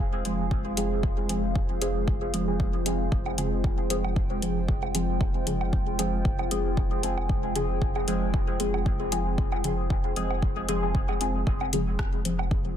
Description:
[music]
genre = dub techno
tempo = 115 BPM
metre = 4/4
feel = swing 54% on 16ths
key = F minor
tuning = A4 = 438 Hz
[part]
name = dark analog pad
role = sustained chords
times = 0.0-12.8 s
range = Ab3 to G5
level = -34 LUFS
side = equal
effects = chorus, phaser, sidechain pumping
[part]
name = soft dub sub bass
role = bass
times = 0.0-12.8 s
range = F1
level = -31 LUFS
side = equal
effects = sidechain pumping
[part]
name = deep mellow chord stab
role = stabs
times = 0.3-12.4 s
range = F3 to Ab4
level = -30 LUFS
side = equal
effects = chorus, phaser, cassette tape, sidechain pumping, dub echo
[part]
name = deep house drum kit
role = drums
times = 0.3-12.4 s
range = hi-hat, rim click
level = -33 LUFS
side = left 3 dB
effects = none
[part]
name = electronic kick drum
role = drums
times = 0.5-12.6 s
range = none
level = -27 LUFS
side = equal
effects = none
[part]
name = electronic woodblock and toms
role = percussion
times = 3.3-12.5 s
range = none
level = -37 LUFS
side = right 5 dB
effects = overdrive, sidechain pumping on perc, sidechain pumping on toms, dub echo
[sound]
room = light reverb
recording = dense, heavily limited modern master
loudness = -24 LUFS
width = side -10 dB against mid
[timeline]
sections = 0.0-11.5 A section; 11.5-12.8 A section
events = filter sweep on synth stab 11.5-12.8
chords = 0.0 Fm

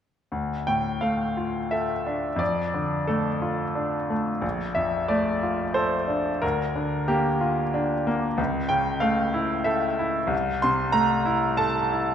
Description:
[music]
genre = classical, romantic character piece for solo piano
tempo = 84-97 BPM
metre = 3/4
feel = rubato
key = D minor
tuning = A4 = 440 Hz
[part]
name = bright grand piano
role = solo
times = 0.3-12.1 s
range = Bb1 to C6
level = -22 LUFS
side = equal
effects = none
[sound]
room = wet recital hall reverb, RT60 1.4 s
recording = dark, warm production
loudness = -22 LUFS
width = side -8 dB against mid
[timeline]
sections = 0.3-12.1 A section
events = none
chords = 0.3 Dm; 2.4 Dm/F; 4.4 Bbmaj7; 6.4 Bb/D; 8.4 A/C#; 10.3 Am/C

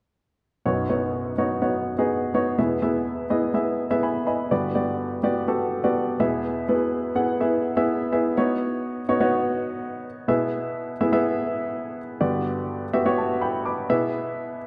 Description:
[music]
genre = pop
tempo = 125 BPM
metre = 4/4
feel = straight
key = unclear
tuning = A4 = 440 Hz
[part]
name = warm upright piano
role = accompaniment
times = 0.7-14.7 s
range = B1 to D6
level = -24 LUFS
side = equal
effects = none
[sound]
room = moderate scoring stage reverb, RT60 1.6 s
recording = dark, warm production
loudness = -24 LUFS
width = mono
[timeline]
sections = 0.7-8.4 A section; 8.4-14.7 B section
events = upright piano fill 3.8-4.5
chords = 0.7 Badd9; 2.6 E; 4.5 Gmaj7; 6.2 E; 8.4 Badd9; 10.3 E; 12.2 Gmaj7; 13.9 E

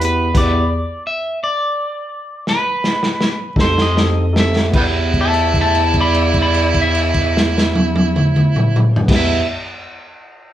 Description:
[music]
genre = slow blues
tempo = 50-59 BPM (dotted quarters)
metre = 12/8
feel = straight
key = E minor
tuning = A4 = 440 Hz
[part]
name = electric guitar at the edge of break-up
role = melody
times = 0.0-9.5 s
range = B4 to B5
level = -19 LUFS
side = left 1 dB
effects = none
[part]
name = warm concert grand piano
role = accompaniment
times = 0.0-9.4 s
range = B3 to B4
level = -24 LUFS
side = right 2 dB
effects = none
[part]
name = dark bass clarinet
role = bass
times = 0.0-9.4 s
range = E2 to F2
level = -19 LUFS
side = left 1 dB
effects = none
[part]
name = vintage drum kit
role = drums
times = 0.0-9.3 s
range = crash cymbal, hi-hat, kick drum, snare drum, toms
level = -17 LUFS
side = equal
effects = none
[part]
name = overdriven harmonica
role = second line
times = 4.8-9.4 s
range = G3 to E4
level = -20 LUFS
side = right 6 dB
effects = none
[sound]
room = moderate large studio reverb, RT60 1.1 s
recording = band playing live in one room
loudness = -13 LUFS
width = side -12 dB against mid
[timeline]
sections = 0.0-4.7 A section; 4.7-9.6 B section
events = slowing down 0.0-4.7; stop 0.3-3.6; drum fill 2.5-4.7; held note 4.7-9.1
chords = 0.0 Em; 3.6 F7; 4.7 Em

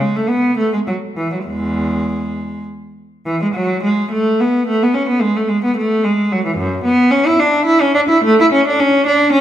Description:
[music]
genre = classical, baroque-style suite movement for unaccompanied cello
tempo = 97-113 BPM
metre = 3/4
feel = rubato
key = unclear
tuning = A4 = 440 Hz
[part]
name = rich cello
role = solo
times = 0.0-9.4 s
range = E2 to E4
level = -13 LUFS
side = equal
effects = none
[sound]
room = wet recital hall reverb, RT60 1.5 s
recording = minimal, uncompressed stereo recording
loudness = -13 LUFS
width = side -11 dB against mid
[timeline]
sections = 0.0-3.3 A section; 3.3-9.4 A section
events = none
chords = none

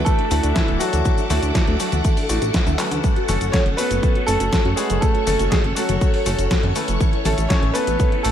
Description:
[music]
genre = italo disco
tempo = 121 BPM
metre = 4/4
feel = straight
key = F# minor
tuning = A4 = 440 Hz
[part]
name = warm concert grand piano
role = melody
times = 0.0-8.3 s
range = E3 to C#5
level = -24 LUFS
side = equal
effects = ping-pong delay
[part]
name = phased string machine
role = sustained chords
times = 0.0-8.3 s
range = A4 to D6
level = -26 LUFS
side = equal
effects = ensemble chorus, phaser
[part]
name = soft round pluck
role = arpeggios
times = 0.0-8.3 s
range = E3 to A4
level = -29 LUFS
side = right 3 dB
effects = ensemble chorus, cassette tape, ping-pong delay
[part]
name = bright baby grand piano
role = stabs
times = 0.0-8.3 s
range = A3 to B4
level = -27 LUFS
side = left 3 dB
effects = none
[part]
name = chorused synth bass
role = bass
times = 0.0-8.3 s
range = D1 to F#2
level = -22 LUFS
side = equal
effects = none
[part]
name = detuned 8-bit digital drum machine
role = drums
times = 0.1-8.3 s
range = cabasa, handclaps, hi-hat, snare drum, toms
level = -25 LUFS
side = left 1 dB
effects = gated reverb
[part]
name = electronic kick drum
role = drums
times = 0.1-8.1 s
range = none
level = -19 LUFS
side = equal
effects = none
[sound]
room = little or no reverb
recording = none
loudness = -17 LUFS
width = side -10 dB against mid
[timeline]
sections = 0.0-8.3 A section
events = drum fill 2.8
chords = 0.0 Dadd9; 3.0 F#m; 7.0 A

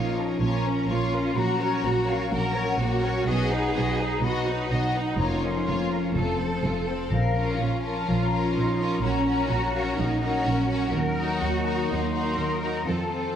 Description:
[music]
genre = cinematic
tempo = 126 BPM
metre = 4/4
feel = straight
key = Bb harmonic minor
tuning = A4 = 440 Hz
[part]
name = warm symphonic violin section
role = melody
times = 0.0-13.4 s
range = A4 to D#5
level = -35 LUFS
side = left 6 dB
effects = none
[part]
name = bright symphonic violin section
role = second line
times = 0.0-13.4 s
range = Db4 to Bb4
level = -35 LUFS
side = left 1 dB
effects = none
[part]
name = large flute ensemble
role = second line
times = 0.0-13.4 s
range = F5 to C6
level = -32 LUFS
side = left 3 dB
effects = none
[part]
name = rich symphonic viola section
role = accompaniment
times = 0.0-13.4 s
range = A3 to D#4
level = -34 LUFS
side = right 1 dB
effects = none
[part]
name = mellow French horn section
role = sustained chords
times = 0.0-13.4 s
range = F3 to D#4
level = -31 LUFS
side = left 3 dB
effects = none
[part]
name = concert harp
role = arpeggios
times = 0.0-13.4 s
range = F2 to D#5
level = -35 LUFS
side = left 5 dB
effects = none
[part]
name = rich symphonic cello section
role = bass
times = 0.0-13.3 s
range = Db4 to Bb4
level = -30 LUFS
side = right 2 dB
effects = none
[part]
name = rich symphonic double bass section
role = bass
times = 0.0-13.3 s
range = F1 to F2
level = -28 LUFS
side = right 3 dB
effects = none
[part]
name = timpani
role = percussion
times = 0.0-0.1, 5.2-7.8 s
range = F2 to Bb2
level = -32 LUFS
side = left 2 dB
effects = none
[sound]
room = wet scoring stage reverb, RT60 2.0 s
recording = none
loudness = -23 LUFS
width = side -9 dB against mid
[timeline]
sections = 0.0-13.4 A section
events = none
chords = 0.0 Bbm; 1.4 Gb/Bb; 3.3 B; 5.2 Bbm/F; 6.1 F; 7.1 Bbm; 9.0 Gb/Bb; 10.9 Ebm

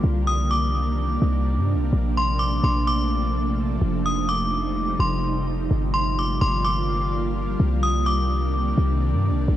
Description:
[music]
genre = hip hop, atmospheric cloud-rap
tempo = 127 BPM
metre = 4/4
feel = half-time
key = unclear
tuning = A4 = 439 Hz
[part]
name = ethereal airy pad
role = sustained chords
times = 0.0-9.6 s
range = C3 to F4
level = -26 LUFS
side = right 1 dB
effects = ensemble chorus, built-in reverb
[part]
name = warm 808-style bass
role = bass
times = 0.0-9.6 s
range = F1 to G2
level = -23 LUFS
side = equal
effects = none
[part]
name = metallic FM bell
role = melody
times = 0.3-9.0 s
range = C6 to Eb6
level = -26 LUFS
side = equal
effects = chorus, low-pass filter, tape echo
[sound]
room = little or no reverb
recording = home recording on cassette, nothing above 10.5 kHz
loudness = -20 LUFS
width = side -12 dB against mid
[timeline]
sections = 0.0-5.7 A section; 5.7-9.6 B section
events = none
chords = 0.0 Cm9; 1.9 Bbmaj9; 3.8 F9; 5.7 Gm7; 7.6 Cm9

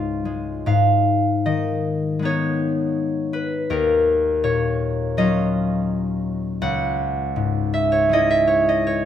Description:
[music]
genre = classical, solo harp piece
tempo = 69-83 BPM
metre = 4/4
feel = rubato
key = G# minor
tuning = A4 = 439 Hz
[part]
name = concert harp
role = solo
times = 0.0-9.1 s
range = C#2 to F#5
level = -18 LUFS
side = left 1 dB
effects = none
[sound]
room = wet stone room reverb, RT60 1.2 s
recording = none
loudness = -18 LUFS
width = side -10 dB against mid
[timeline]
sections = 0.7-9.1 A section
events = none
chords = 0.0 C#9; 0.7 G#m6; 3.7 D#m9; 6.6 C#m6

